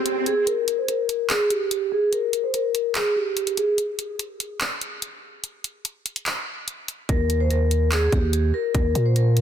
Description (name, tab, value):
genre	hip hop, trap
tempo	145 BPM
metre	4/4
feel	half-time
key	unclear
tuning	A4 = 440 Hz
part	vibraphone with medium mallets	melody	0.0-3.8, 7.1-9.4 s	G4 to C5	-23 LUFS	left 1 dB	low-pass filter, tape echo
part	swell	sound effects	0.0-0.5 s	none	-29 LUFS	left 3 dB	none
part	trap drum kit	drums	0.1-9.4 s	handclaps, hi-hat, kick drum	-26 LUFS	equal	none
part	growling 808-style bass	bass	7.1-9.4 s	Eb2 to Bb2	-20 LUFS	right 1 dB	none
room	light reverb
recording	dense, heavily limited modern master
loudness	-21 LUFS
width	side -9 dB against mid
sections	0.5-9.4 A section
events	swell 0.0-0.5; break 0.5-7.1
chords	0.0 N.C.; 7.1 Eb5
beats	0.06 | 0.47 0.88 1.30 1.71 | 2.13 2.54 2.95 3.37 | 3.78 4.20 4.61 5.02 | 5.44 5.85 6.26 6.68 | 7.09 7.50 7.92 8.33 | 8.75 9.16